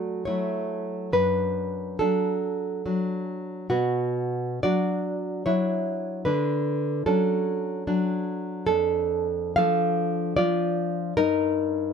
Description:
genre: romantic piece for solo classical guitar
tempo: 63-77 BPM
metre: 3/4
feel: rubato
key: D minor from 8.7 s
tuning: A4 = 438 Hz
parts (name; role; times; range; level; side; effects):
- nylon-string guitar; solo; 0.0-11.9 s; F2 to F5; -23 LUFS; equal; none
room: light reverb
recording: close, detailed microphones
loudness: -23 LUFS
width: side -6 dB against mid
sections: 0.0-11.9 A section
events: none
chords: 0.0 D; 1.1 D/F#; 3.7 Bm; 6.3 Bm/D; 8.7 Dm/F; 11.2 Eb/G

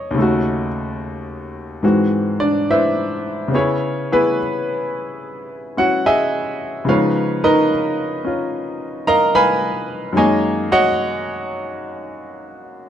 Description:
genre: solo jazz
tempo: 72 BPM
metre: 4/4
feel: swing 67% on 8ths, rubato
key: unclear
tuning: A4 = 440 Hz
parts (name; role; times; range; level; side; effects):
- clear baby grand piano; solo; 0.0-12.9 s; D#2 to B5; -17 LUFS; equal; none
room: moderate studio ambience, RT60 0.5 s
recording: dark, warm production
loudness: -16 LUFS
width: side -10 dB against mid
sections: 0.0-12.9 A section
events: grand piano solo 0.0-12.9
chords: 0.2 D#m7b5; 1.8 G#7alt; 3.5 C#m9; 6.9 C#13; 10.2 F#69

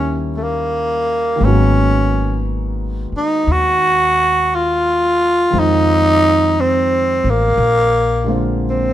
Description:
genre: jazz ballad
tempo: 58 BPM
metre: 4/4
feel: swing 66% on 8ths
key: unclear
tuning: A4 = 440 Hz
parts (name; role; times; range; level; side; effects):
- growling tenor saxophone; melody; 0.0-8.9 s; A3 to Gb4; -14 LUFS; equal; none
- warm grand piano; accompaniment; 0.0-8.9 s; D3 to F4; -23 LUFS; left 1 dB; none
- upright bass; bass; 0.0-8.9 s; Ab1 to F2; -19 LUFS; equal; none
room: light reverb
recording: minimal, uncompressed stereo recording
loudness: -13 LUFS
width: side -12 dB against mid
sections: 0.0-8.9 A section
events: none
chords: 0.0 Eb7b9; 1.4 Abm9; 5.5 Fm7; 7.6 Bb9

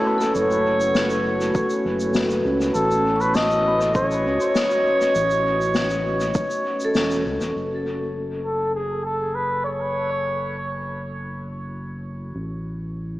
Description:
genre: ambient dub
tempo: 100 BPM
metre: 4/4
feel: straight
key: F# dorian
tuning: A4 = 441 Hz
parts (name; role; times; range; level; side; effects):
- trumpet with cup mute; melody; 0.0-10.8 s; G#4 to D#5; -23 LUFS; equal; dub echo
- deep dark ambient pad; sustained chords; 0.0-13.2 s; A3 to D#5; -26 LUFS; equal; chorus, built-in reverb
- vibraphone with medium hard mallets; arpeggios; 0.2-8.7 s; A4 to C#6; -29 LUFS; left 1 dB; vintage 12-bit sampler grit, analog delay
- shaker and snare drum; drums; 0.2-7.5 s; none; -28 LUFS; left 2 dB; low-pass filter on snare, small room reverb, low-pass filter on perc, low-pass filter on room, dub echo
- round analog bass; bass; 0.3-13.2 s; E1 to C#2; -29 LUFS; equal; none
- electronic kick drum; drums; 1.5-6.5 s; none; -25 LUFS; equal; overdrive, small room reverb
room: moderate plate reverb, RT60 2.6 s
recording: echo-heavy mix, small speaker sound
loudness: -20 LUFS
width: side -17 dB against mid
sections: 0.0-7.5 A section; 7.5-13.2 B section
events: band accent 7.0; filter sweep on ambient pad 7.5-13.2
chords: 0.0 F#m7; 2.8 Aadd9; 7.5 F#m7; 12.3 Aadd9

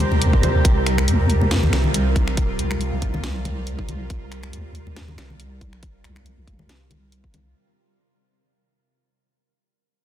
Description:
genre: deep dubstep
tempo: 139 BPM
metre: 4/4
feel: swing 55% on 16ths, half-time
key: C minor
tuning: A4 = 439 Hz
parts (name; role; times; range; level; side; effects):
- bowed-like drone; sustained chords; 0.0-7.5 s; C3 to G4; -27 LUFS; right 2 dB; built-in reverb, phaser
- filtered dub chord stab; stabs; 0.0-0.5 s; G3 to C5; -31 LUFS; right 4 dB; lush chorus, dub echo
- deep soft wobble bass; bass; 0.0-7.5 s; C2 to Eb2; -22 LUFS; equal; chorus
- garage drum kit; drums; 0.0-7.4 s; finger snaps, hi-hat, snare drum; -28 LUFS; left 1 dB; none
- congas and bongos; percussion; 0.0-7.4 s; none; -29 LUFS; left 3 dB; dub echo
- wind-like tuned noise texture; texture; 0.0-7.6 s; Bb4; -31 LUFS; right 3 dB; built-in reverb
- electronic kick drum; drums; 0.3-7.3 s; none; -20 LUFS; equal; none
room: digital ambience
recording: dense, heavily limited modern master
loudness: -18 LUFS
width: side -11 dB against mid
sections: 0.0-7.6 A section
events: fade-out 0.0-7.6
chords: 0.0 C5

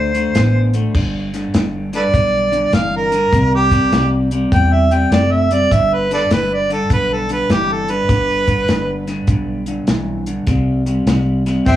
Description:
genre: electric blues shuffle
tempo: 101 BPM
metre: 4/4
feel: swing 65% on 8ths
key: G major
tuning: A4 = 439 Hz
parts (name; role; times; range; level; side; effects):
- mellow harmonica; melody; 0.0-11.8 s; G4 to G5; -17 LUFS; right 1 dB; overdrive
- electric guitar through a small old amp; riff; 0.0-11.8 s; G2 to B3; -20 LUFS; left 1 dB; none
- vintage muted fingered electric bass; bass; 0.0-11.8 s; F#1 to E2; -20 LUFS; equal; none
- warm soul drum kit; drums; 0.1-11.8 s; crash cymbal, hi-hat, kick drum, snare drum; -18 LUFS; equal; none
room: light reverb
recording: small room ambience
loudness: -14 LUFS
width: side -12 dB against mid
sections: 0.9-11.8 A section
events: harmonica solo 0.9-11.8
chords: 0.0 D5; 0.9 G; 3.3 C; 5.7 G; 10.5 C5

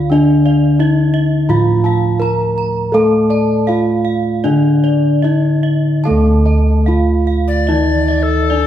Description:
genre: Javanese gamelan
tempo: 73-89 BPM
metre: 4/4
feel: straight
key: D pelog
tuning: A4 = 440 Hz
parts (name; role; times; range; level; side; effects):
- gamelan-type bronze metallophone; melody; 0.0-8.7 s; D4 to Bb4; -17 LUFS; left 1 dB; none
- gamelan-type bronze metallophone; accompaniment; 0.0-8.7 s; D3 to A3; -16 LUFS; left 1 dB; none
- gamelan-type bronze metallophone; arpeggios; 0.0-8.7 s; D5 to Bb5; -25 LUFS; right 6 dB; none
- gamelan-type bossed gongs; bass; 0.0-8.7 s; D2 to A4; -16 LUFS; right 1 dB; none
- gamelan-type bossed gongs; arpeggios; 0.1-8.7 s; D5 to Bb5; -26 LUFS; left 3 dB; none
- bright reedy tenor recorder; second line; 7.5-8.7 s; A4 to D5; -18 LUFS; left 4 dB; none
room: wet recital hall reverb, RT60 1.6 s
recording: recorded in a church or concert hall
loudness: -11 LUFS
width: side -11 dB against mid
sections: 0.0-6.0 A section; 6.0-8.7 B section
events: none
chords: none

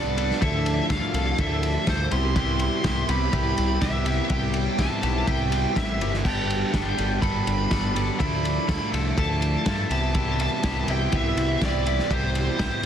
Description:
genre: indie rock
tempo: 123 BPM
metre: 4/4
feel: straight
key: C major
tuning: A4 = 440 Hz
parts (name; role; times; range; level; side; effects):
- bluesy overdriven lead guitar; melody; 0.0-12.9 s; C5 to C6; -29 LUFS; right 1 dB; distortion, slapback echo
- soft string machine; sustained chords; 0.0-12.9 s; F3 to D6; -40 LUFS; left 1 dB; none
- crunchy overdriven guitar; riff; 0.0-12.9 s; G2 to B4; -30 LUFS; right 12 dB; wide subtle chorus, slapback echo
- twelve-string electric guitar; riff; 0.0-12.9 s; F3 to A4; -30 LUFS; left 8 dB; none
- overdriven picked electric bass; bass; 0.0-12.9 s; G1 to G2; -27 LUFS; equal; none
- vintage drum kit; drums; 0.2-12.9 s; crash cymbal, kick drum, ride cymbal, snare drum; -27 LUFS; equal; none
room: little or no reverb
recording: dense, heavily limited modern master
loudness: -21 LUFS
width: side -9 dB against mid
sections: 0.0-12.9 A section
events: none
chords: 0.4 Dmadd9; 2.1 Cmaj7; 6.2 Gadd9; 8.2 Dmadd9; 9.9 Cmaj7

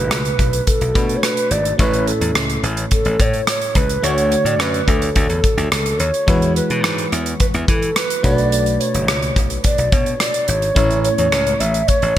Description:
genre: 1980s-style pop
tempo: 107 BPM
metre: 4/4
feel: straight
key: A major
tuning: A4 = 440 Hz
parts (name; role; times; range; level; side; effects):
- breathy mellow shakuhachi; melody; 0.0-12.2 s; A4 to E5; -20 LUFS; equal; shimmer reverb
- FM electric piano; accompaniment; 0.0-12.2 s; A2 to C#5; -23 LUFS; equal; chorus, shimmer reverb
- glassy slap bass; bass; 0.0-12.1 s; F#1 to E3; -21 LUFS; equal; none
- modern studio drum kit; drums; 0.1-12.2 s; hi-hat, kick drum, rim click; -19 LUFS; equal; gated reverb
room: moderate lush hall reverb, RT60 2.5 s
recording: bright 1980s-style digital production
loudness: -15 LUFS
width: side -12 dB against mid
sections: 0.0-12.2 A section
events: none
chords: 0.0 Bm7; 1.8 A; 4.0 Dmaj7; 6.3 Eadd9; 8.2 Bm7; 10.8 A

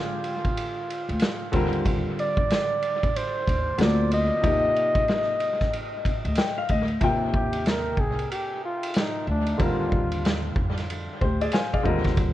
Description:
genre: hip hop, jazz-hop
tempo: 93 BPM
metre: 4/4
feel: swing 62% on 16ths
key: Eb major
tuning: A4 = 440 Hz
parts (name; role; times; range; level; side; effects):
- breathy flugelhorn; melody; 0.0-10.6 s; D4 to Eb5; -27 LUFS; equal; dub echo
- warm upright piano; accompaniment; 0.0-12.3 s; C3 to Ab5; -29 LUFS; left 2 dB; none
- vintage drum kit; drums; 0.2-12.3 s; hi-hat, kick drum, ride cymbal, snare drum; -26 LUFS; equal; vintage 12-bit sampler grit, dub echo
- upright bass; bass; 1.1-12.3 s; C2 to F2; -28 LUFS; equal; none
room: light reverb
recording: echo-heavy mix, cassette tape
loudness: -22 LUFS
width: side -14 dB against mid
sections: 0.0-7.0 A section; 7.0-12.3 B section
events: upright piano fill 6.0-7.0, 11.2-12.2; flugelhorn solo 7.0-12.3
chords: 0.0 Bb9; 1.5 Eb6; 3.8 D7alt; 4.4 Eb6; 7.0 Cm11; 9.6 Bbadd9/Eb

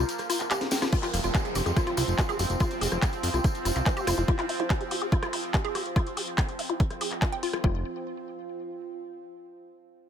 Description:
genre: psychedelic trance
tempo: 143 BPM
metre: 4/4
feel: straight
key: unclear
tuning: A4 = 439 Hz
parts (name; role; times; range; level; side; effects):
- bubbling stepped-filter texture; sustained chords; 0.0-7.7 s; F3 to C4; -35 LUFS; right 2 dB; chorus, built-in reverb, sidechain pumping
- fat analog bass; bass; 0.0-4.2, 7.6-7.8 s; F1 to F2; -28 LUFS; equal; none
- techno drum kit; drums; 0.1-7.6 s; handclaps, hi-hat, rim click, snare drum; -32 LUFS; equal; none
- tambourine; percussion; 0.1-4.3 s; none; -37 LUFS; left 4 dB; none
- woody wave-folded pluck; riff; 0.3-7.8 s; F4 to G5; -32 LUFS; moving between left 6 dB and right 4 dB; chorus, auto-pan, sidechain pumping, ping-pong delay
- electronic kick drum; drums; 0.9-7.7 s; none; -25 LUFS; equal; none
- downlifter; sound effects; 0.9-4.3 s; none; -38 LUFS; equal; none
- warbly tape-like pad; texture; 0.9-9.3 s; F4 to F5; -41 LUFS; right 2 dB; none
room: light reverb, digital ambience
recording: none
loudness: -25 LUFS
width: side -8 dB against mid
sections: 0.9-7.6 A section; 7.6-9.3 B section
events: break 0.1-0.9; drum fill 0.6-0.9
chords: 0.0 F5

